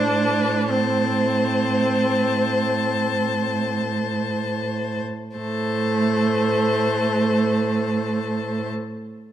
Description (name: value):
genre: classical, slow romantic movement for string quartet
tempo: free time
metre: none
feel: none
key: A minor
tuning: A4 = 440 Hz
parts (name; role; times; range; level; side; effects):
- warm violin; melody; 0.0-8.7 s; A5; -28 LUFS; left 7 dB; none
- rich violin; second line; 0.0-8.7 s; C5; -27 LUFS; left 2 dB; none
- rich viola; accompaniment; 0.0-8.7 s; A3 to D4; -23 LUFS; right 2 dB; none
- rich cello; bass; 0.0-8.7 s; A2; -25 LUFS; right 4 dB; none
room: wet recital hall reverb, RT60 1.7 s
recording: none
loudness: -19 LUFS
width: side -10 dB against mid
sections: 0.0-5.4 A section; 5.4-9.3 B section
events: slowing down 0.0-5.4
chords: 0.0 Am